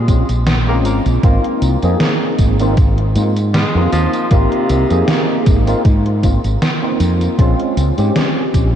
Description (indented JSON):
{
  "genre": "vaporwave",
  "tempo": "78 BPM",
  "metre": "4/4",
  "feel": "swing 54% on 16ths",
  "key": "unclear",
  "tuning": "A4 = 441 Hz",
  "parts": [
    { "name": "mellow fretless electric bass", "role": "bass", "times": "0.0-8.8 s", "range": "Ab1 to Ab2", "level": "-15 LUFS", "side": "equal", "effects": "none" },
    { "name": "bright tine electric piano", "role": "accompaniment", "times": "0.1-8.7 s", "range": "Ab3 to Ab4", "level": "-18 LUFS", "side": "equal", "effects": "ensemble chorus, vintage 12-bit sampler grit, ping-pong delay" },
    { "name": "electronic kick drum", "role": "drums", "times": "0.1-8.7 s", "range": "none", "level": "-13 LUFS", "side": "equal", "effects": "overdrive" },
    { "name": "gated 80s digital drum machine", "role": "drums", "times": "0.1-8.7 s", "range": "hi-hat, snare drum, tambourine", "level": "-21 LUFS", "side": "right 1 dB", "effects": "gated reverb, gated reverb snare, overdrive" },
    { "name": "warm tenor saxophone", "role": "melody", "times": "0.7-5.4 s", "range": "C3 to Bb3", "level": "-24 LUFS", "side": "left 1 dB", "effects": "tape echo" }
  ],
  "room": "moderate cathedral reverb, RT60 5.7 s",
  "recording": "dreamy mix soaked in reverb, cassette tape, nothing above 11.0 kHz",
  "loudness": "-12 LUFS",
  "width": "side -10 dB against mid",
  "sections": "0.0-8.8 A section",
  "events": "none",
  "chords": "0.0 Bbm9; 1.2 Ab69; 7.4 Bbm9"
}